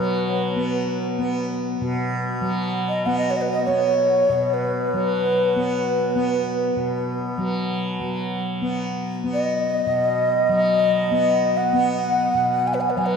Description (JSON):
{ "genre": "world meditative, free-time meditation music", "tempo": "free time", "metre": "none", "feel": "none", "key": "B major pentatonic", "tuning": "A4 = 440 Hz", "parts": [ { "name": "breathy mellow Native American-style cedar flute", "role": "melody", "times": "0.0-13.2 s", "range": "B4 to G#5", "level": "-21 LUFS", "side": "equal", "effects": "shimmer reverb" }, { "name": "tanpura", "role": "drone", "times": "0.0-13.2 s", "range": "B2 to B3", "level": "-24 LUFS", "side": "equal", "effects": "none" } ], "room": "wet cathedral reverb, RT60 5.6 s", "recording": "in a vast, echoing space, cassette tape", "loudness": "-19 LUFS", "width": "side -6 dB against mid", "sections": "0.0-8.0 A section; 8.0-13.2 A section", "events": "none", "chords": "none" }